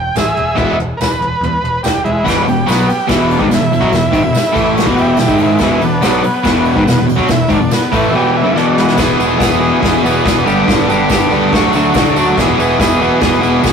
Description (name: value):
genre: garage rock duo or trio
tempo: 142 BPM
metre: 4/4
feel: straight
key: E mixolydian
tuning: A4 = 440 Hz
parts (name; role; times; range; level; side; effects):
- overdriven combo organ; melody; 0.0-9.0 s; G#3 to G5; -17 LUFS; right 1 dB; none
- growling picked electric bass; bass; 0.0-13.7 s; E1 to E2; -23 LUFS; equal; overdrive
- soft brush drum kit; drums; 0.2-13.7 s; crash cymbal, hi-hat, kick drum, ride cymbal, snare drum, toms; -18 LUFS; equal; none
- tambourine; percussion; 0.2-13.7 s; none; -32 LUFS; right 5 dB; none
- crunchy overdriven guitar; riff; 0.6-13.7 s; E2 to G#4; -12 LUFS; equal; none
room: wet stone room reverb, RT60 1.1 s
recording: rough rehearsal-room recording, warm saturation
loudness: -10 LUFS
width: side -6 dB against mid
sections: 0.0-2.2 A section; 2.2-9.0 B section; 9.0-13.7 C section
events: drum fill 8.6-9.0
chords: 0.0 E; 10.5 G; 11.5 D; 12.4 E